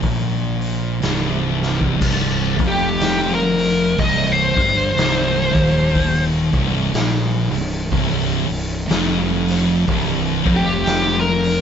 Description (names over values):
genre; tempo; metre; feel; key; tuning
stoner and doom metal; 61 BPM; 4/4; swing 59% on 8ths; C minor; A4 = 442 Hz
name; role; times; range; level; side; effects
fuzz lead guitar; melody; 0.0-11.6 s; G4 to Eb5; -19 LUFS; equal; wah, distortion
thick fuzz guitar; riff; 0.0-11.6 s; C2 to Bb2; -21 LUFS; left 7 dB; distortion
thick fuzz guitar; riff; 0.0-11.6 s; C2 to Bb2; -22 LUFS; right 10 dB; distortion
fuzz fingered electric bass; bass; 0.0-11.6 s; C1 to Bb1; -24 LUFS; equal; overdrive
raw garage drum kit; drums; 0.0-11.6 s; crash cymbal, hi-hat, kick drum, snare drum; -23 LUFS; left 1 dB; none
room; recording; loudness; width
light reverb; band playing live in one room, nothing above 7.8 kHz; -16 LUFS; side -8 dB against mid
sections
0.0-2.0 A section; 2.0-11.6 B section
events
drum fill 1.5-2.0; lead electric guitar solo 2.0-11.6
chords
0.0 N.C.; 2.0 Cm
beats
0.03 1.02 | 2.00 2.99 3.98 4.96 | 5.95 6.93 7.91 8.89 | 9.87 10.85